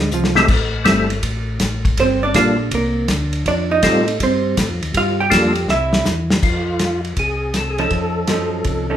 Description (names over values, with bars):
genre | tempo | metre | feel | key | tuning
soul jazz organ trio | 162 BPM | 4/4 | swing 66% on 8ths | F mixolydian | A4 = 440 Hz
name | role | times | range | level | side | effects
vintage hollow-body jazz guitar | accompaniment | 0.0-9.0 s | F3 to G5 | -19 LUFS | right 4 dB | none
tonewheel organ | bass | 0.0-9.0 s | G1 to A2 | -22 LUFS | left 1 dB | slow rotary speaker
warm soul drum kit | drums | 0.1-8.8 s | crash cymbal, hi-hat, kick drum, ride cymbal, snare drum | -20 LUFS | left 1 dB | none
percussive tonewheel organ | melody | 0.4-8.9 s | G3 to A4 | -18 LUFS | left 1 dB | slow rotary speaker, chorus vibrato
room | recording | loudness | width
moderate large studio reverb, RT60 0.7 s | band playing live in one room | -15 LUFS | side -10 dB against mid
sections
0.0-6.4 A section; 6.4-9.0 B section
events
hollow-body jazz guitar solo 0.0-6.4; drum fill 0.1-0.5, 5.7-6.4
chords
0.5 Am7; 2.0 Gm7; 2.7 Csus2; 3.5 F7; 4.9 Gm7; 5.7 C; 6.4 F; 7.9 F7b13